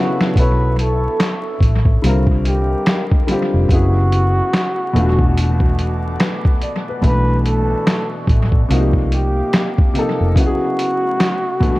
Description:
lo-fi hip hop; 72 BPM; 4/4; swing 60% on 16ths; B minor; A4 = 440 Hz
trumpet with bucket mute; melody; 0.0-11.8 s; F#4 to B4; -22 LUFS; equal; analog delay
warm upright piano; accompaniment; 0.0-11.8 s; B2 to A5; -21 LUFS; left 1 dB; analog delay
warbly tape-like pad; sustained chords; 0.0-11.8 s; A3 to D6; -31 LUFS; right 1 dB; chorus, built-in reverb, phaser
lo-fi sampler-style drum kit; drums; 0.2-11.8 s; handclaps, hi-hat, kick drum, snare drum; -16 LUFS; equal; overdrive, analog delay
vintage muted fingered electric bass; bass; 0.4-10.3 s; E1 to C2; -16 LUFS; equal
light reverb; echo-heavy mix, vinyl crackle; -14 LUFS; side -19 dB against mid
0.4-11.8 A section
drum fill 0.0-0.4
0.4 Bm11; 2.0 Cm11; 3.7 F#m11; 4.9 E9sus4; 7.0 Bm11; 8.7 Cm11; 10.4 F#m11
| 0.36 1.20 2.03 2.86 | 3.70 4.53 5.36 6.20 | 7.03 7.86 8.70 9.53 | 10.36 11.20

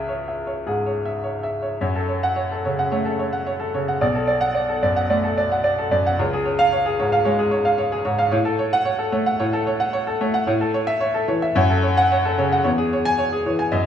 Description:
classical, virtuoso piano study; 111 BPM; 4/4; rubato; F# minor, C# minor from 10.5 s; A4 = 440 Hz
bright grand piano; solo; 0.0-13.9 s; B1 to G#5; -18 LUFS; equal
wet stone room reverb, RT60 1.3 s; -18 LUFS; side -9 dB against mid
0.0-1.8 A section; 1.8-13.9 B section
0.0 C#m; 1.8 F#m; 4.0 Bm7; 6.2 C#; 8.3 F#m/A; 10.5 A; 11.6 F#m; 12.6 C#m/E
0.09 0.66 1.24 | 1.81 2.37 2.92 3.47 | 4.01 4.55 5.10 5.64 | 6.18 6.73 7.27 7.80 | 8.34 8.87 9.40 9.94 | 10.48 11.01 11.55 12.09 | 12.63 13.17 13.72

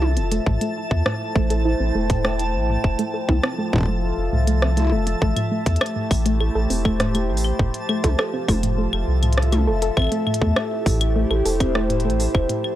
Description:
IDM; 101 BPM; 4/4; straight; A minor; A4 = 439 Hz
warbly tape-like pad; sustained chords; 0.0-12.8 s; F3 to G5; -26 LUFS; equal; chorus, built-in reverb, phaser
soft round pluck; arpeggios; 0.0-12.6 s; A2 to A4; -25 LUFS; equal; chorus, tape echo
warm sub bass; bass; 0.0-12.5 s; E1 to E2; -22 LUFS; equal
glitchy drum kit; drums; 0.0-12.8 s; claves, hi-hat, rim click, toms; -25 LUFS; left 1 dB
twinkling granular texture; texture; 0.0-12.8 s; A5; -34 LUFS; right 2 dB; built-in reverb
electronic kick drum; drums; 0.5-12.5 s; -20 LUFS; equal
little or no reverb; dry, gritty hardware recording; -18 LUFS; side -13 dB against mid
0.0-12.8 A section
filter sweep on synth arpeggio sound 0.0-12.8
0.5 Am7; 2.8 Fmaj7; 5.2 Am7; 7.6 Fmaj7; 10.0 Am7
| 0.47 1.06 1.65 2.25 | 2.84 3.44 4.03 4.62 | 5.22 5.81 6.41 7.00 | 7.59 8.19 8.78 9.38 | 9.97 10.56 11.16 11.75 | 12.35

